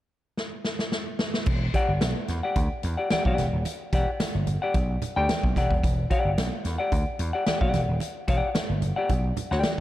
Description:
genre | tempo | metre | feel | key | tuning
funk | 110 BPM | 4/4 | straight | E minor | A4 = 440 Hz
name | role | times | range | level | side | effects
swinging big-band drum kit | drums | 0.4-9.8 s | crash cymbal, hi-hat, kick drum, snare drum | -27 LUFS | equal | none
vintage slap bass | bass | 1.5-9.6 s | D#1 to E2 | -27 LUFS | equal | none
congas | percussion | 1.5-9.8 s | none | -36 LUFS | right 6 dB | none
semi-hollow electric guitar | accompaniment | 1.7-9.7 s | G4 to G5 | -28 LUFS | left 3 dB | spring reverb
room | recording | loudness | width
light reverb, small room ambience | dark, warm production | -23 LUFS | side -14 dB against mid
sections
0.0-1.5 A section; 1.5-9.8 B section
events
drum fill 0.4-1.5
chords
0.0 N.C.; 1.5 Em9

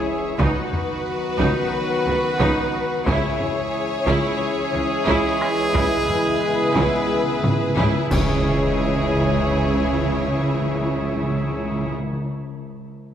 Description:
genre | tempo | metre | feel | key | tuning
cinematic, epic orchestral film score | 89 BPM | 4/4 | straight | C# minor | A4 = 439 Hz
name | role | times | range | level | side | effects
warm symphonic violin section | melody | 0.0-11.9 s | B4 to C#5 | -28 LUFS | left 4 dB | none
rich symphonic violin section | second line | 0.0-11.9 s | F#4 to G#4 | -31 LUFS | left 3 dB | none
warm studio viola section | accompaniment | 0.0-11.9 s | B3 to E4 | -29 LUFS | right 1 dB | none
dark trombone section | sustained chords | 0.0-11.9 s | D#3 to G#3 | -30 LUFS | right 4 dB | none
pipe organ, flutes | sustained chords | 0.0-11.9 s | D#4 to F#5 | -30 LUFS | left 1 dB | none
warm French horn section | sustained chords | 0.0-11.9 s | B3 to F#4 | -30 LUFS | left 3 dB | none
clear trumpet | stabs | 0.0-11.9 s | G#4 to B4 | -27 LUFS | right 1 dB | none
rich symphonic cello section | bass | 0.4-11.9 s | C#3 | -28 LUFS | right 3 dB | none
rich symphonic double bass section | bass | 0.4-11.9 s | C#2 | -28 LUFS | right 2 dB | none
taiko ensemble | drums | 0.4-9.4 s | none | -27 LUFS | equal | none
timpani | percussion | 3.1-12.2 s | C#3 | -27 LUFS | equal | none
clash cymbals and concert bass drum | percussion | 8.1-9.8 s | none | -28 LUFS | equal | none
room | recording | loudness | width
wet scoring stage reverb, RT60 2.1 s | none | -18 LUFS | side -9 dB against mid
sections
0.0-8.5 A section; 8.5-11.1 B section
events
timpani fill 5.7-8.5; drum fill 7.4-8.5; band accent 8.5-9.1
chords
0.4 B/C#; 3.1 C#m; 5.7 E/C#; 8.1 C#m

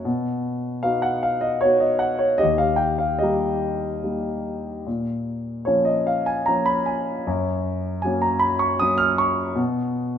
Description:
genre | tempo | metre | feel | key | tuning
classical, lyrical solo piano | 72-80 BPM | 3/4 | rubato | unclear | A4 = 440 Hz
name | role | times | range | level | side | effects
warm concert grand piano | solo | 0.0-10.2 s | Eb2 to F6 | -20 LUFS | equal | none
room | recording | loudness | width
moderate recital hall reverb, RT60 1.5 s | minimal, uncompressed stereo recording | -20 LUFS | side -8 dB against mid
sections
0.0-10.2 A section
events
none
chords
0.0 B; 2.4 Eb; 4.9 Bbm; 7.3 Gb; 9.6 N.C.

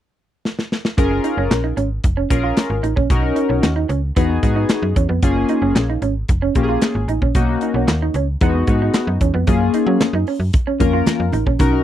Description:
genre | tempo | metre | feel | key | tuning
early-eighties boogie funk | 113 BPM | 4/4 | straight | F# major | A4 = 441 Hz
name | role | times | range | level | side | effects
modern studio drum kit | drums | 0.5-11.7 s | handclaps, hi-hat, kick drum, snare drum | -18 LUFS | equal | none
chorused polysynth | accompaniment | 1.0-11.8 s | G#3 to A#4 | -20 LUFS | left 4 dB | none
slap-like FM bass | bass | 1.0-11.8 s | E#1 to F#3 | -20 LUFS | equal | none
electric guitar through a small old amp | riff | 1.1-11.8 s | B3 to E#4 | -23 LUFS | right 7 dB | wide subtle chorus
congas | percussion | 9.5-11.7 s | none | -26 LUFS | right 4 dB | none
room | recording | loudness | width
little or no reverb | dry, close 1970s-style studio recording | -15 LUFS | side -11 dB against mid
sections
1.0-9.5 A section; 9.5-11.8 B section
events
drum fill 0.4-1.0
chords
0.0 N.C.; 1.0 F#maj9; 3.1 Bmaj9; 4.2 Emaj9; 5.2 F#maj9; 7.3 Bmaj9; 8.4 Emaj9; 9.5 F#maj9

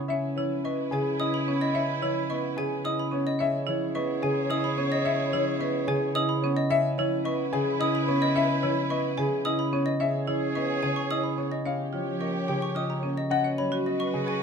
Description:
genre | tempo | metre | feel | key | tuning
classical, minimalist pattern music | 109 BPM | 3/4 | straight | C# minor | A4 = 441 Hz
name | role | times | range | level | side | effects
concert harp | accompaniment | 0.0-14.4 s | C#3 to C#4 | -30 LUFS | left 2 dB | none
warm concert grand piano | melody | 0.1-14.3 s | G4 to F#5 | -31 LUFS | left 5 dB | none
bright clarinet | second line | 0.1-14.4 s | E4 to G#4 | -36 LUFS | right 7 dB | none
rich studio string section | sustained chords | 0.1-14.4 s | E4 to C#5 | -36 LUFS | equal | none
marimba with hard mallets | arpeggios | 0.1-14.4 s | C#4 to C#5 | -31 LUFS | right 5 dB | none
xylophone with rubber mallets | arpeggios | 0.6-14.4 s | D#5 to D#6 | -34 LUFS | equal | none
room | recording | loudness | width
light reverb | minimal, uncompressed stereo recording | -24 LUFS | side -6 dB against mid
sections
0.0-13.3 A section; 13.3-14.4 B section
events
none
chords
0.0 C#m7; 11.7 D#7; 13.3 G#m7

